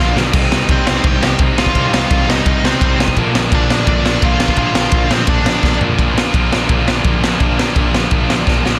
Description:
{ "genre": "punk rock", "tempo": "170 BPM", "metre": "4/4", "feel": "straight", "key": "unclear", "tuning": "A4 = 440 Hz", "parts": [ { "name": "nasal lead guitar with a parked wah", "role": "melody", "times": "0.0-5.8 s", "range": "C4 to G5", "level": "-22 LUFS", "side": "equal", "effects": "overdrive, tape echo" }, { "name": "biting overdriven guitar", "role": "riff", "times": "0.0-8.8 s", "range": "Bb2 to Eb4", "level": "-22 LUFS", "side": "equal", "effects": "none" }, { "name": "distorted electric guitar", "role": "riff", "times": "0.0-8.8 s", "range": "Bb2 to F4", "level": "-23 LUFS", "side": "equal", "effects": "distortion" }, { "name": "fuzz picked electric bass", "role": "bass", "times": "0.0-8.8 s", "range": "Bb1 to C2", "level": "-23 LUFS", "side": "equal", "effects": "overdrive" }, { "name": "raw garage drum kit", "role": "drums", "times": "0.2-8.7 s", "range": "crash cymbal, kick drum, ride cymbal, snare drum, toms", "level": "-17 LUFS", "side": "equal", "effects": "none" } ], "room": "little or no reverb", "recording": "dense, heavily limited modern master", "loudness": "-14 LUFS", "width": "mono", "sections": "0.0-6.0 A section; 6.0-8.8 B section", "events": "drum fill 0.0-0.3, 5.6-6.0, 8.5-8.8", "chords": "0.3 Cm; 3.2 Bb" }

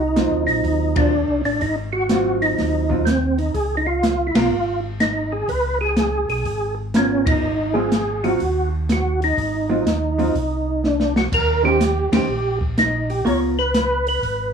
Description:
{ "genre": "soul jazz organ trio", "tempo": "124 BPM", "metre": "4/4", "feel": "swing 66% on 8ths", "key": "Ab mixolydian", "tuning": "A4 = 440 Hz", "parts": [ { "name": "percussive tonewheel organ", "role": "melody", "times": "0.0-14.5 s", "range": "C4 to Db5", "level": "-20 LUFS", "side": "right 1 dB", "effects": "slow rotary speaker, chorus vibrato, plate reverb" }, { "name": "mellow tonewheel organ", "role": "bass", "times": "0.0-14.5 s", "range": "Ab1 to Eb2", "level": "-25 LUFS", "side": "equal", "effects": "slow rotary speaker" }, { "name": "vintage hollow-body jazz guitar", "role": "accompaniment", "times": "0.2-13.5 s", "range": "Eb3 to C5", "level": "-22 LUFS", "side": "right 1 dB", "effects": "none" }, { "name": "open jazz drum kit", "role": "drums", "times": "0.2-14.4 s", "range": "crash cymbal, hi-hat, kick drum, ride cymbal, snare drum", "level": "-24 LUFS", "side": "equal", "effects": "none" } ], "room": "moderate studio reverb, RT60 0.7 s", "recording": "small room ambience", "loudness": "-17 LUFS", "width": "side -6 dB against mid", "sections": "0.0-14.5 A section", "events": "band accent 0.9, 4.3, 7.2, 12.0; drum fill 10.8-11.3", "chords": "0.0 Ab13; 3.5 Db6; 7.4 Ab6; 11.3 Eb6; 13.3 Db6" }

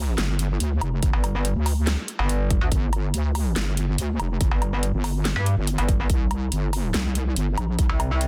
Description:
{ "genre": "heavy wobble dubstep", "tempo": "142 BPM", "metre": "4/4", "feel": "half-time", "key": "G minor", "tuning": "A4 = 439 Hz", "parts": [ { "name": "wobble bass", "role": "bass", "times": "0.0-7.9 s", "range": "F1 to D2", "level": "-26 LUFS", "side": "equal", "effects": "chorus, overdrive" }, { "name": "big-room dance drum kit", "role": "drums", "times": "0.2-8.3 s", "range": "handclaps, hi-hat, snare drum, woodblock", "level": "-32 LUFS", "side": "equal", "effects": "none" }, { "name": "electronic kick drum", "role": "drums", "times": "1.0-7.9 s", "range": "none", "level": "-24 LUFS", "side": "equal", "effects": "none" }, { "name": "metallic wobble bass", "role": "bass", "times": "1.1-8.3 s", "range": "G1 to G2", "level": "-25 LUFS", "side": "equal", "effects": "chorus, overdrive" } ], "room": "little or no reverb", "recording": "dense, heavily limited modern master", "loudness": "-24 LUFS", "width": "mono", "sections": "0.0-8.3 A section", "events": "none", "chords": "0.0 G5; 6.1 C5" }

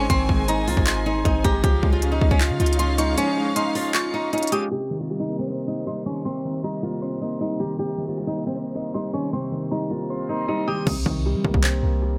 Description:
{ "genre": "hip hop, trap", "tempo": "156 BPM", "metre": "4/4", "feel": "half-time", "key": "C phrygian", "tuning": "A4 = 445 Hz", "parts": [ { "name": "flamenco guitar", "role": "melody", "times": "0.0-10.9 s", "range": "C4 to G4", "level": "-29 LUFS", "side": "equal", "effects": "delay" }, { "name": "glassy synth bell", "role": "second line", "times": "0.0-10.9 s", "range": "Bb5 to Eb6", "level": "-34 LUFS", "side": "equal", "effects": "chorus, delay" }, { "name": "warm concert grand piano", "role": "accompaniment", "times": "0.0-12.2 s", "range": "C3 to Eb5", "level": "-30 LUFS", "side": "equal", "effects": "low-pass filter" }, { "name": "warm studio string section", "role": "sustained chords", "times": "0.0-10.8 s", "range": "C3 to Ab5", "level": "-36 LUFS", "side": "equal", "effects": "none" }, { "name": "clean 808-style bass", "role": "bass", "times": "0.0-3.2, 10.9-12.2 s", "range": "Ab1 to G3", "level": "-26 LUFS", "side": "equal", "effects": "none" }, { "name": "trap drum kit", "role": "drums", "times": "0.1-11.7 s", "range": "crash cymbal, handclaps, hi-hat, kick drum", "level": "-25 LUFS", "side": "equal", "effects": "none" } ], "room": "little or no reverb", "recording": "low-pass filter", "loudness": "-23 LUFS", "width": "mono", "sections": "0.0-4.7 A section; 4.7-10.9 B section; 10.9-12.2 C section", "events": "break 3.2-4.7; filter sweep 4.7-10.9; hi-hats muted 10.9-12.2; filter sweep on grand piano 10.9-12.2", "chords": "0.0 Ab; 1.6 Dbadd9; 4.7 Cm7" }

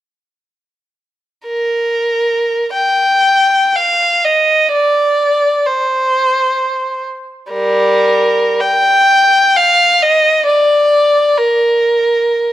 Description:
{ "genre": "classical, free, expressive piece for unaccompanied violin", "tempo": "free time", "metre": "none", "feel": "none", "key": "G minor", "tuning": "A4 = 439 Hz", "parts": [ { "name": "warm violin", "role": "solo", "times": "1.5-12.5 s", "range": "G3 to G5", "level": "-10 LUFS", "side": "equal", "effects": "none" } ], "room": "moderate recital hall reverb, RT60 1.7 s", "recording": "none", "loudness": "-10 LUFS", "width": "side -13 dB against mid", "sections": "1.5-12.5 A section", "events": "none", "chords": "none" }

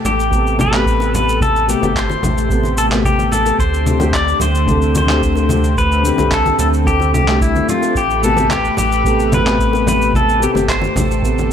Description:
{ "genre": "sunset chillout", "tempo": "110 BPM", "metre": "4/4", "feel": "straight", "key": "A minor", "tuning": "A4 = 439 Hz", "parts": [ { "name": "lush unison pad", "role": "sustained chords", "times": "0.0-11.5 s", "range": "D3 to B4", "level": "-22 LUFS", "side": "left 1 dB", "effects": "chorus" }, { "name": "warm sub bass", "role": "bass", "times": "0.0-11.5 s", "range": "G1 to D2", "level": "-19 LUFS", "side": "right 1 dB", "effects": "tube saturation" }, { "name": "pedal steel guitar", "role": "melody", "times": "0.1-11.5 s", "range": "E4 to D5", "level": "-18 LUFS", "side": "left 2 dB", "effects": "tape echo" }, { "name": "electronic shaker, congas and handclaps", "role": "drums", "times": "0.1-11.5 s", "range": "none", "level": "-22 LUFS", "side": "left 1 dB", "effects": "none" }, { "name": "congas and bongos", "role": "percussion", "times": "0.1-11.5 s", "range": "none", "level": "-24 LUFS", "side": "left 1 dB", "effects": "none" }, { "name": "dark concert grand piano", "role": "accompaniment", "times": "0.3-11.5 s", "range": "C3 to A4", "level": "-20 LUFS", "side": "moving between left 5 dB and right 3 dB", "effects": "auto-pan, tape echo" }, { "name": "electronic kick drum", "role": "drums", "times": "0.3-11.3 s", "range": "none", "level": "-21 LUFS", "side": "right 1 dB", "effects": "none" } ], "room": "light reverb, digital ambience", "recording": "none", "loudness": "-12 LUFS", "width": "side -8 dB against mid", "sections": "0.0-11.5 A section", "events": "none", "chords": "0.0 Am9; 3.6 D7sus4; 8.0 Am9" }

